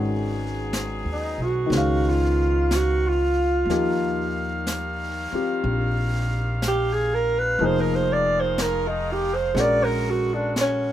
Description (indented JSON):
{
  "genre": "jazz ballad",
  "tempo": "61 BPM",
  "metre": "4/4",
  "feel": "swing 69% on 8ths",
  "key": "Eb major",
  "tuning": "A4 = 441 Hz",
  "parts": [
    { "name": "warm grand piano", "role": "accompaniment", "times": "0.0-10.9 s", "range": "Eb3 to F5", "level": "-28 LUFS", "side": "left 3 dB", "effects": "none" },
    { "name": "clear saxophone section", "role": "sustained chords", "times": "0.0-10.9 s", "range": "D3 to F5", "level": "-32 LUFS", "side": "right 1 dB", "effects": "none" },
    { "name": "upright bass", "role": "bass", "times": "0.0-10.9 s", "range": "F1 to Eb2", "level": "-26 LUFS", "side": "equal", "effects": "none" },
    { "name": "jazz brush drum kit", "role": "drums", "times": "0.7-10.9 s", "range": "brushed snare drum, hi-hat, snare drum", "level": "-33 LUFS", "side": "equal", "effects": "none" },
    { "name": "warm alto saxophone", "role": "melody", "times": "1.1-10.9 s", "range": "C#4 to D5", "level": "-22 LUFS", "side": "right 2 dB", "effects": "none" }
  ],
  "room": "little or no reverb",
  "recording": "close, detailed microphones",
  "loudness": "-20 LUFS",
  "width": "side -12 dB against mid",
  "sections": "0.0-10.9 A section",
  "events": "alto saxophone solo 0.0-10.9",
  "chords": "0.0 Abm7; 1.7 Db9; 3.7 Ebadd9; 7.6 Fm7; 9.6 Bb7alt",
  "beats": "0.73 1.71 2.69 | 3.67 4.65 5.63 6.61 | 7.59 8.58 9.56 10.55"
}